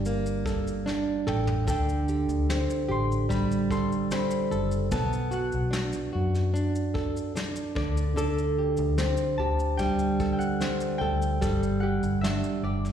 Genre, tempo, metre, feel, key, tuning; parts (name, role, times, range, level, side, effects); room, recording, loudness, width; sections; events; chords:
acoustic pop; 74 BPM; 4/4; straight; D mixolydian; A4 = 440 Hz
concert harp; melody; 0.0-12.9 s; D5 to C6; -34 LUFS; left 1 dB; slapback echo
flamenco guitar; accompaniment; 0.0-12.9 s; D3 to A4; -27 LUFS; right 1 dB; slapback echo
vintage muted fingered electric bass; bass; 0.0-12.9 s; F#1 to F#2; -29 LUFS; left 1 dB
vintage brush drum kit; drums; 0.1-12.9 s; kick drum, shaker, snare drum, toms; -33 LUFS; equal; slapback echo
moderate club ambience, RT60 0.5 s; live gig heard through the venue's PA, recital hall reverb; -24 LUFS; side -9 dB against mid
0.0-12.9 A section
drum fill 0.9-1.7
0.0 Gmadd9; 1.7 D7sus4; 4.9 Bm7; 7.8 D7sus4; 11.4 Gsus2